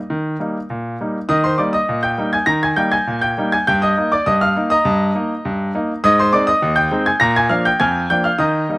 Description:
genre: ragtime piano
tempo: 101 BPM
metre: 2/4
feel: straight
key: Eb major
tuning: A4 = 441 Hz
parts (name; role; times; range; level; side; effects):
- bright grand piano; solo; 0.0-8.8 s; Eb2 to Bb6; -15 LUFS; equal; slapback echo
room: light reverb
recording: recorded outdoors, with no room sound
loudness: -14 LUFS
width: side -25 dB against mid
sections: 0.0-1.3 A section; 1.3-8.8 A section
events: none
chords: 0.0 Eb; 3.7 Eb/G; 6.0 Ab; 7.2 Bb7

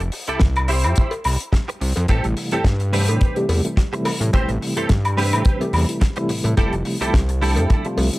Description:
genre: nu-disco, nu disco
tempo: 107 BPM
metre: 4/4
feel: swing 55% on 16ths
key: A minor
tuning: A4 = 442 Hz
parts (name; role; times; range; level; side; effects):
- fat analog bass; bass; 0.0-8.1 s; F1 to A2; -20 LUFS; equal; tube saturation
- damped 70s drum kit; drums; 0.0-8.2 s; hi-hat, snare drum, woodblock; -26 LUFS; left 1 dB; small room ambience
- direct-recorded clean electric guitar; riff; 0.1-7.9 s; C4 to C5; -26 LUFS; right 2 dB; ensemble chorus, analog delay
- kick drum; drums; 0.4-7.8 s; none; -17 LUFS; equal; small room ambience
- cowbell; percussion; 1.1-8.1 s; none; -29 LUFS; left 2 dB; none
- mellow tine electric piano; accompaniment; 2.1-8.2 s; C3 to G4; -24 LUFS; equal; medium tremolo, sidechain pumping
room: small room ambience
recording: dry, gritty hardware recording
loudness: -17 LUFS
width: side -19 dB against mid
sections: 0.0-8.2 A section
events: none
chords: 0.0 Fmaj7sus2; 2.1 Am7; 6.6 Fmaj9

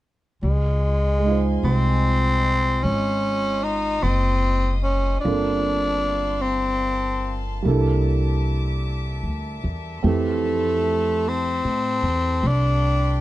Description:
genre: jazz ballad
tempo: 50 BPM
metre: 4/4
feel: swing 68% on 8ths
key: unclear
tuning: A4 = 435 Hz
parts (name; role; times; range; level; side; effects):
- growling tenor saxophone; melody; 0.4-13.2 s; Ab3 to Eb4; -22 LUFS; left 1 dB; none
- warm studio string section; sustained chords; 0.4-13.2 s; F4 to Eb6; -35 LUFS; left 3 dB; none
- upright bass; bass; 0.4-13.2 s; Gb1 to A2; -22 LUFS; equal; none
- warm grand piano; accompaniment; 1.2-13.2 s; E3 to C5; -27 LUFS; right 4 dB; none
room: light reverb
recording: dark, warm production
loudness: -19 LUFS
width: side -15 dB against mid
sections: 0.4-13.2 A section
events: none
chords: 0.4 Dbmaj9; 5.2 Gm11; 7.6 C13; 10.0 Fmaj7

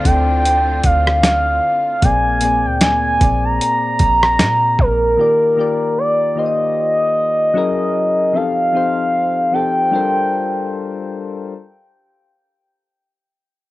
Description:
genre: contemporary R&B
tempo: 76 BPM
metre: 4/4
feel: swing 58% on 16ths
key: G minor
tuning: A4 = 439 Hz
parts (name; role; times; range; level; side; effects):
- gliding portamento lead; melody; 0.0-11.1 s; Bb4 to Bb5; -15 LUFS; equal; chorus, cassette tape, analog delay
- soft electric-piano-like synth keys; accompaniment; 0.0-11.5 s; Bb2 to Eb5; -22 LUFS; left 5 dB; chorus, cassette tape
- clear studio string section; sustained chords; 0.0-2.0 s; D3 to F4; -29 LUFS; equal; cassette tape
- soft 808-style bass; bass; 0.1-5.2 s; Bb1 to Bb2; -20 LUFS; equal; none
- dusty soul sampler-style drum kit; drums; 0.1-5.0 s; hi-hat, kick drum, rim click, snare drum; -16 LUFS; equal; cassette tape
room: digital ambience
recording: home recording on cassette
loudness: -13 LUFS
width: side -17 dB against mid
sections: 0.0-11.5 A section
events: none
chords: 0.0 Dm7; 2.0 Bb7; 5.2 Ebmaj9; 7.6 F#9; 8.3 F9; 9.9 Gm11

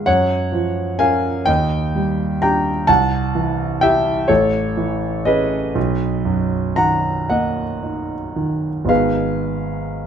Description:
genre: classical, impressionist solo piano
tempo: 36-44 BPM (dotted quarters)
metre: 6/8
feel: rubato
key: unclear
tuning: A4 = 436 Hz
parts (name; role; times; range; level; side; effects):
- warm concert grand piano; solo; 0.0-10.1 s; Ab1 to Bb5; -16 LUFS; right 1 dB; none
room: light reverb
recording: close, detailed microphones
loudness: -16 LUFS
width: side -8 dB against mid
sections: 0.0-10.1 A section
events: none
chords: 0.1 Gbmaj7; 1.5 Ebmaj7; 2.9 C; 4.3 Amaj7; 5.8 Bmaj7; 8.9 Abm6

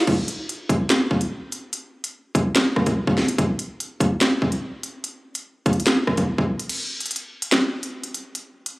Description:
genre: hip hop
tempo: 145 BPM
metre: 4/4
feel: half-time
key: none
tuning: none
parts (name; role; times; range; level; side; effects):
- drill drum kit; drums; 0.1-8.8 s; crash cymbal, handclaps, hi-hat, kick drum, rim click, snare drum; -20 LUFS; equal; overdrive
room: wet lush hall reverb, RT60 2.0 s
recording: recorded on a phone in the room, club reverb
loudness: -20 LUFS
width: side -22 dB against mid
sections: 0.0-6.7 A section; 6.7-8.8 B section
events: break 6.7-8.8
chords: none

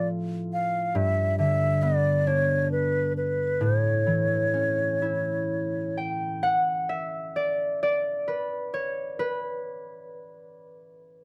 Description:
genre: celtic folk, Celtic slow air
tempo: 44 BPM (dotted quarters)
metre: 6/8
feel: uneven beats, rubato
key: A mixolydian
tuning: A4 = 436 Hz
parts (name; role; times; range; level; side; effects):
- wooden flute; melody; 0.0-6.0 s; B4 to F5; -28 LUFS; equal; none
- concert harp; accompaniment; 0.0-11.2 s; G2 to G5; -29 LUFS; equal; none
room: little or no reverb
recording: dry, close 1970s-style studio recording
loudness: -26 LUFS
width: mono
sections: 0.0-6.4 A section; 6.4-11.2 B section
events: harp solo 6.4-11.2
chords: 0.0 Dm/A (rootless); 0.9 G; 3.6 A; 6.4 N.C.

